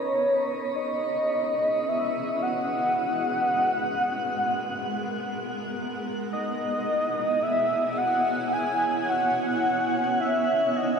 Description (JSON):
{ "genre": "ambient", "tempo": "free time", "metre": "none", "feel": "none", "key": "E lydian", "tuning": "A4 = 439 Hz", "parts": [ { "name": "warm velvety synth lead", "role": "melody", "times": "0.0-11.0 s", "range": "C#5 to G#5", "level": "-24 LUFS", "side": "equal", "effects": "chorus, diffuse ambient delay" }, { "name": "granular cloud pad", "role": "sustained chords", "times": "0.0-11.0 s", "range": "G#3 to G#5", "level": "-30 LUFS", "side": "right 1 dB", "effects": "built-in reverb" } ], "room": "wet shimmer reverb, RT60 8.2 s", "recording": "cassette tape", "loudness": "-23 LUFS", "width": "side -6 dB against mid", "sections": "0.0-11.0 A section", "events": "fade-in on ambient pad 0.0-11.0", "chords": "0.0 C#m7; 3.0 G#m7; 6.3 E6; 9.6 Badd9" }